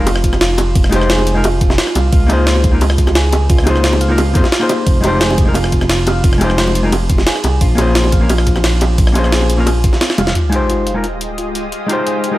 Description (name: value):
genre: liquid drum and bass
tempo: 175 BPM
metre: 4/4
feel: straight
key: F minor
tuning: A4 = 440 Hz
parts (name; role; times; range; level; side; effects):
- hollow-body jazz guitar; accompaniment; 0.0-12.4 s; Ab3 to C5; -18 LUFS; left 2 dB; low-pass filter, dub echo
- harp-like synth pluck; arpeggios; 0.0-12.2 s; F4 to F5; -22 LUFS; right 2 dB; chorus, dub echo
- smooth synth bass; bass; 0.0-10.3 s; F1 to F2; -15 LUFS; equal; none
- jungle sampler-style drum kit; drums; 0.1-12.3 s; hi-hat, ride cymbal, rim click, snare drum, toms; -19 LUFS; equal; none
- bongos; percussion; 0.1-10.3 s; none; -21 LUFS; equal; none
- electronic kick drum; drums; 0.2-9.9 s; none; -14 LUFS; equal; none
- shimmering ambient pad; sustained chords; 10.8-12.4 s; Ab3 to Eb5; -23 LUFS; left 1 dB; chorus, built-in reverb, vintage 12-bit sampler grit, sidechain pumping
- sub drop; sound effects; 10.4-11.7 s; none; -20 LUFS; equal; none
room: digital ambience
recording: none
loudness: -11 LUFS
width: side -16 dB against mid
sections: 0.0-10.4 A section; 10.4-12.4 B section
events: drop 0.0-10.4; drum fill 10.0-10.4; impact 10.4-11.7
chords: 0.0 Fm9; 2.1 Dbmaj13; 4.9 Fm9; 7.6 Bbm9; 10.4 Fm9